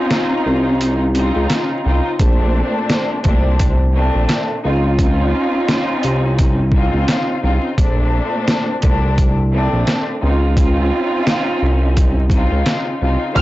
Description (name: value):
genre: hip hop, boom-bap hip-hop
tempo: 86 BPM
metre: 4/4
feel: swing 57% on 16ths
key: unclear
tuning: A4 = 441 Hz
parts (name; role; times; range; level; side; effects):
- warm studio string section; accompaniment; 0.0-13.4 s; Bb2 to C5; -19 LUFS; equal; high-pass filter, low-pass filter, plate reverb
- trip hop sampler-style drum kit; drums; 0.1-13.4 s; hi-hat, kick drum, snare drum; -17 LUFS; equal; none
- smooth synth bass; bass; 0.5-13.4 s; Bb1 to Db2; -16 LUFS; equal; tube saturation
- warm studio violin section; melody; 13.4 s; F6; -15 LUFS; right 1 dB; high-pass filter, low-pass filter
- warm studio string section; sustained chords; 13.4 s; Bb2 to F4; -22 LUFS; equal; high-pass filter, low-pass filter
room: light reverb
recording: blown-out, overdriven recording, vinyl crackle, overdrive, nothing above 7.9 kHz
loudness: -14 LUFS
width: side -16 dB against mid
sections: 0.0-13.4 A section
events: break 0.0-2.2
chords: 0.0 Dbmaj9; 2.2 Bbmaj9; 4.6 Dbmaj9; 7.8 Bbmaj9; 10.2 Dbmaj9